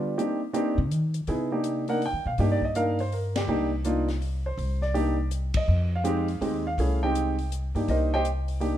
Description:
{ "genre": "jazz piano trio", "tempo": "164 BPM", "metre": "3/4", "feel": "swing 64% on 8ths", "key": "C minor", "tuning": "A4 = 444 Hz", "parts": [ { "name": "warm grand piano", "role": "melody", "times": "0.0-8.8 s", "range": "G3 to G5", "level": "-27 LUFS", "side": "right 1 dB", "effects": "none" }, { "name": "upright bass", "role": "bass", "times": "0.0-8.8 s", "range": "C2 to Eb3", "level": "-27 LUFS", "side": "equal", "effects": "none" }, { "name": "open jazz drum kit", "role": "drums", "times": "0.2-8.7 s", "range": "hi-hat, kick drum, ride cymbal, snare drum", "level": "-35 LUFS", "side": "left 2 dB", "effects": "none" } ], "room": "light reverb", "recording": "minimal, uncompressed stereo recording", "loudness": "-24 LUFS", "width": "side -12 dB against mid", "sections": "0.0-1.3 A section; 1.3-8.8 B section", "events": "upright bass solo 0.0-1.3; band accent 3.3, 5.5", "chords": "0.2 Cm7; 5.7 Fm7; 7.9 Cm7" }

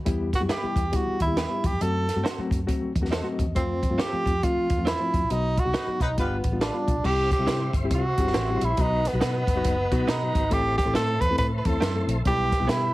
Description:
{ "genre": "uptempo 1960s-style soul", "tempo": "138 BPM", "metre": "4/4", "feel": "swing 61% on 8ths", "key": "E harmonic minor", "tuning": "A4 = 444 Hz", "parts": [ { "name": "barky reed electric piano", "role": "accompaniment", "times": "0.1-12.9 s", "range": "F3 to D#5", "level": "-30 LUFS", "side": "left 3 dB", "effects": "overdrive, fast tremolo" }, { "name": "vintage muted fingered electric bass", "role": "bass", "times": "0.1-12.9 s", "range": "F#1 to C3", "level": "-28 LUFS", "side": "equal", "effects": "none" }, { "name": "compact cocktail drum kit", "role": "drums", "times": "0.1-12.8 s", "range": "crash cymbal, hi-hat, kick drum, snare drum", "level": "-27 LUFS", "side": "equal", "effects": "none" }, { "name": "breathy tenor saxophone", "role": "melody", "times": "0.3-12.9 s", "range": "B3 to B4", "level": "-27 LUFS", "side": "right 1 dB", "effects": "plate reverb" }, { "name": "direct-recorded clean electric guitar", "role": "stabs", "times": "0.5-12.8 s", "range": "G3 to C5", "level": "-34 LUFS", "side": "right 3 dB", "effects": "ensemble chorus, plate reverb" }, { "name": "warm horn section", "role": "second line", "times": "5.7-6.4 s", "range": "F#3 to B4", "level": "-33 LUFS", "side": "left 1 dB", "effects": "plate reverb" }, { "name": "tonewheel organ", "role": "sustained chords", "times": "7.0-12.9 s", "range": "B4 to C6", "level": "-38 LUFS", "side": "left 1 dB", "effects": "slow rotary speaker, chorus vibrato, plate reverb" } ], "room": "moderate club reverb, RT60 0.6 s", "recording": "heavily compressed radio sound", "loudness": "-22 LUFS", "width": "side -18 dB against mid", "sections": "0.0-7.0 A section; 7.0-12.9 B section", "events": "reed electric piano fill 2.9-3.6; band accent 5.3-7.0", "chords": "0.1 Em; 1.8 F#dim; 3.6 F; 5.3 B; 6.2 G7; 7.0 C; 8.8 B; 10.5 Am; 12.3 Em/B" }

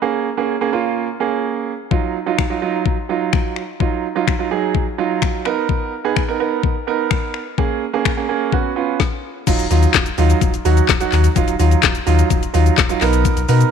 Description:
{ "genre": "dance-pop", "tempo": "127 BPM", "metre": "4/4", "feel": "straight", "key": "Eb minor", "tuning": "A4 = 440 Hz", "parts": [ { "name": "clear baby grand piano", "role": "accompaniment", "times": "0.0-13.7 s", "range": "Gb3 to A#4", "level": "-19 LUFS", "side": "right 9 dB", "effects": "sidechain pumping" }, { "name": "smooth R&B drum kit", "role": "drums", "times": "1.9-13.7 s", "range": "crash cymbal, finger snaps, handclaps, hi-hat, kick drum, shaker, snare drum", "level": "-18 LUFS", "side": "left 6 dB", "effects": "none" }, { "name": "sub bass with octave", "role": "bass", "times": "9.5-13.6 s", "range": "Eb1 to B2", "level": "-15 LUFS", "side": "left 3 dB", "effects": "sidechain pumping" } ], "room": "light reverb", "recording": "1960s-style stereo with parts hard left and right", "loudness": "-15 LUFS", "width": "side -7 dB against mid", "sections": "0.0-9.5 A section; 9.5-13.7 B section", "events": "stop 9.0-9.5", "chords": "0.0 Bbm7; 1.9 Ebmadd9; 5.5 Bmaj7; 7.6 Bbm7; 8.5 Db7sus4; 9.5 Ebmadd9; 13.0 Bmaj7" }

